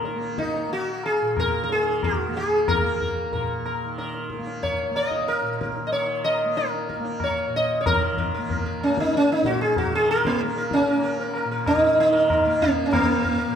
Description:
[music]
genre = indian classical, Hindustani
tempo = 93 BPM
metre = 4/4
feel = straight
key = Bb raga malkauns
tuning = A4 = 440 Hz
[part]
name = tanpura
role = drone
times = 0.0-13.6 s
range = Bb2 to Bb3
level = -31 LUFS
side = right 1 dB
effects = none
[part]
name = tabla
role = percussion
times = 0.0-13.5 s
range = none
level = -29 LUFS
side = left 2 dB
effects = none
[part]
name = sitar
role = melody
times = 0.1-13.6 s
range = Bb3 to Eb5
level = -22 LUFS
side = equal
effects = none
[sound]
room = moderate concert hall reverb, RT60 1.9 s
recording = minimal, uncompressed stereo recording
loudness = -20 LUFS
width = side -8 dB against mid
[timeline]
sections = 0.0-7.9 A section; 7.9-13.6 B section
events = speeding up 0.0-13.6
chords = none

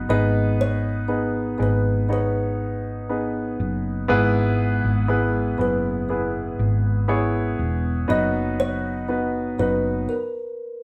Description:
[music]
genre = pop ballad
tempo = 60 BPM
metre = 4/4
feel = straight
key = B major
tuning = A4 = 440 Hz
[part]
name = kalimba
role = melody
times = 0.0-10.8 s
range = A#4 to D#5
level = -30 LUFS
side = equal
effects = none
[part]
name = warm grand piano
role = accompaniment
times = 0.0-10.1 s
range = G#2 to C#5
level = -26 LUFS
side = equal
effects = none
[part]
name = hollow-body short-scale fingered electric bass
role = bass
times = 0.0-10.1 s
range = E1 to G#1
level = -26 LUFS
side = equal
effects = none
[sound]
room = wet studio reverb, RT60 0.7 s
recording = band playing live in one room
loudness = -23 LUFS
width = mono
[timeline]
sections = 0.0-10.8 A section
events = stop 10.1-10.8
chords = 0.1 G#m; 4.1 E; 8.1 B/F#; 10.1 N.C.

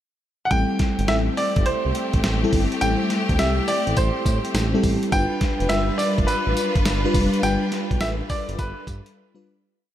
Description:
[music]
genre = R&B, new jack swing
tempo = 104 BPM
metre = 4/4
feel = swing 66% on 16ths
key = A minor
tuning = A4 = 440 Hz
[part]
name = clear baby grand piano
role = melody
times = 0.5-9.4 s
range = B4 to G5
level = -26 LUFS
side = right 1 dB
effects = shimmer reverb
[part]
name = FM electric piano with soft pad layer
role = accompaniment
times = 0.5-9.8 s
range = G3 to B4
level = -25 LUFS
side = left 2 dB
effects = chorus, shimmer reverb
[part]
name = clear studio string section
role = sustained chords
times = 0.5-9.7 s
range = G3 to B4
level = -28 LUFS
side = equal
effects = shimmer reverb
[part]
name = smooth synth bass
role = bass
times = 0.5-9.0 s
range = F1 to A2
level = -25 LUFS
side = equal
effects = none
[part]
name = dusty soul sampler-style drum kit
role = drums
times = 0.5-9.2 s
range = hi-hat, kick drum, snare drum, tambourine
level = -24 LUFS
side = equal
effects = none
[sound]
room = light reverb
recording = none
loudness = -19 LUFS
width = side -11 dB against mid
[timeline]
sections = 0.0-0.5 pickup bar; 0.5-9.7 chorus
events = fade-out 7.4-9.7; break 9.2-9.7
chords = 0.0 N.C.; 0.5 Am7; 5.1 G7

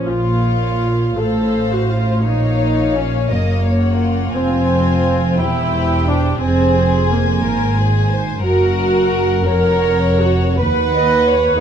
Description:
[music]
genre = classical, slow romantic movement for string orchestra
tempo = 51-61 BPM (dotted quarters)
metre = 6/8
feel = rubato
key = Bb minor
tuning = A4 = 440 Hz
[part]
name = rich studio viola section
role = accompaniment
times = 0.0-11.6 s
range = Bb3 to B4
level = -18 LUFS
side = right 1 dB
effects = none
[part]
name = rich studio violin section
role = second line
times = 0.1-11.6 s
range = Bb4 to Ab5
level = -26 LUFS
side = left 3 dB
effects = none
[part]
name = rich studio double bass section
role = bass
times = 0.1-11.6 s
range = E1 to D#2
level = -20 LUFS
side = right 2 dB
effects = none
[part]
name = warm studio cello section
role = bass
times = 0.1-11.6 s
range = D#2 to Bb2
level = -20 LUFS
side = right 1 dB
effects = none
[part]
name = warm studio violin section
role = melody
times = 1.2-11.6 s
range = F4 to Eb5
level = -23 LUFS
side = left 5 dB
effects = none
[sound]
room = moderate recital hall reverb, RT60 1.6 s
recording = dark, warm production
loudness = -14 LUFS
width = side -8 dB against mid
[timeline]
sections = 0.1-11.6 A section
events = none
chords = 0.1 Bbm; 1.2 F/A; 2.3 Bbm; 4.3 Fm; 5.4 C/E; 6.4 Fm; 8.4 Gb; 10.6 B/D#

